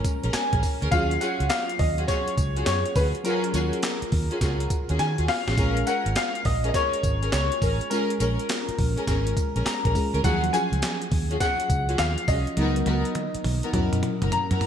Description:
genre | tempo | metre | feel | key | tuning
R&B, new jack swing | 103 BPM | 4/4 | swing 65% on 16ths | Eb minor | A4 = 440 Hz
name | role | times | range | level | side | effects
warm baby grand piano | melody | 0.0-14.7 s | Bb4 to Bb5 | -28 LUFS | left 2 dB | analog chorus
FM electric piano with soft pad layer | accompaniment | 0.0-14.7 s | F3 to Bb4 | -31 LUFS | equal | chorus
breakbeat sampler-style drum kit | drums | 0.0-14.7 s | handclaps, hi-hat, kick drum, snare drum, tambourine, toms | -28 LUFS | right 1 dB | vintage 12-bit sampler grit, gated reverb
warm symphonic string section | stabs | 0.2-14.6 s | Cb4 to Bb4 | -31 LUFS | left 1 dB | none
vintage muted fingered electric bass | bass | 0.2-14.6 s | Gb1 to Eb3 | -26 LUFS | equal | none
room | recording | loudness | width
light reverb | bright 1980s-style digital production | -22 LUFS | side -8 dB against mid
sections
0.0-14.7 A section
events
drum fill 5.0-5.6, 12.6-14.7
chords
0.0 Bbm7; 0.9 Ebm11; 5.6 Bbm7; 10.2 Ebm11; 12.6 Db13sus4; 13.7 Gb7

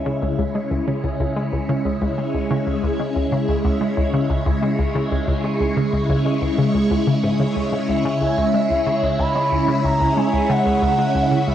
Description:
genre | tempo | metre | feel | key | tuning
ambient | 92 BPM | 4/4 | straight | C# minor | A4 = 439 Hz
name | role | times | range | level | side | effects
phased string machine | sustained chords | 0.0-11.5 s | C#3 to C#5 | -20 LUFS | equal | ensemble chorus, phaser, cassette tape
twinkling granular texture | texture | 0.3-11.5 s | E4 | -38 LUFS | right 1 dB | none
hollow square pluck | riff | 0.1-11.5 s | C#2 to G#3 | -22 LUFS | left 1 dB | chorus, phaser, cassette tape, ping-pong delay
expressive portamento lead | melody | 7.9-11.5 s | E5 to B5 | -21 LUFS | equal | wide subtle chorus, cassette tape, ping-pong delay
room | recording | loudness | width
wet spring reverb, RT60 1.5 s | home recording on cassette, nothing above 10.5 kHz | -17 LUFS | side -10 dB against mid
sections
0.0-11.5 A section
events
none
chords
0.0 C#m

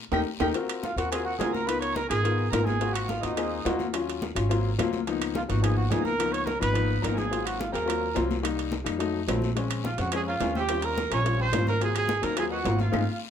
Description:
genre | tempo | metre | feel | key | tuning
Afro-Cuban jazz | 213 BPM | 4/4 | straight | Ab mixolydian | A4 = 439 Hz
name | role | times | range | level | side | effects
overdriven harmonica | second line | 0.1-13.2 s | Bb4 to Db6 | -35 LUFS | right 8 dB | none
warm grand piano | accompaniment | 0.1-13.0 s | F3 to Bb4 | -30 LUFS | left 6 dB | none
upright bass | bass | 0.1-13.0 s | Ab1 to F2 | -30 LUFS | right 1 dB | none
bongos | percussion | 0.1-13.0 s | none | -40 LUFS | left 6 dB | none
claves | percussion | 0.1-13.0 s | none | -42 LUFS | left 8 dB | none
congas | percussion | 0.1-13.0 s | none | -36 LUFS | left 3 dB | none
guiro | percussion | 0.1-13.0 s | none | -44 LUFS | left 7 dB | none
timbales | percussion | 0.1-13.0 s | none | -35 LUFS | right 9 dB | none
breathy trumpet | melody | 0.8-13.2 s | Eb4 to Db5 | -30 LUFS | right 3 dB | plate reverb
room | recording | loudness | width
moderate studio reverb, RT60 0.5 s | none | -24 LUFS | side -8 dB against mid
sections
0.6-13.3 A section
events
drum fill 0.0-0.6, 12.9-13.3; band accent 0.0-0.6, 12.9-13.3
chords
0.0 Eb; 0.6 Ab13; 1.7 Db13; 2.8 Ab13; 3.9 Ebm7; 4.5 Ab13; 5.1 Db13; 7.3 Ab13; 8.4 Cm7; 9.0 F7b9; 9.6 Bbm7; 10.7 Eb13; 11.8 Ab13

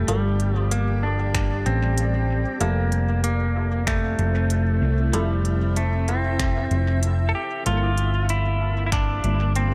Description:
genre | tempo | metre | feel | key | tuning
ambient dub | 95 BPM | 4/4 | swing 57% on 16ths | G dorian | A4 = 444 Hz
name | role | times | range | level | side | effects
clean lap steel guitar | melody | 0.0-9.7 s | G3 to A4 | -29 LUFS | equal | dub echo
granular cloud pad | sustained chords | 0.0-9.7 s | F3 to E5 | -35 LUFS | equal | built-in reverb
hollow-body short-scale fingered electric bass | bass | 0.0-9.7 s | F1 to C2 | -24 LUFS | equal | none
filtered dub chord stab | stabs | 0.1-7.9 s | Bb3 to A4 | -36 LUFS | equal | phaser, lush chorus, cassette tape, dub echo
organic electronic drum kit | drums | 0.1-9.7 s | finger snaps, hi-hat | -34 LUFS | equal | dub echo
electronic kick drum | drums | 1.3-9.1 s | none | -29 LUFS | equal | none
room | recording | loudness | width
light reverb | none | -22 LUFS | mono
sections
0.0-9.7 A section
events
none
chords
0.0 G7sus2; 2.6 Fmaj7; 7.7 Gm9

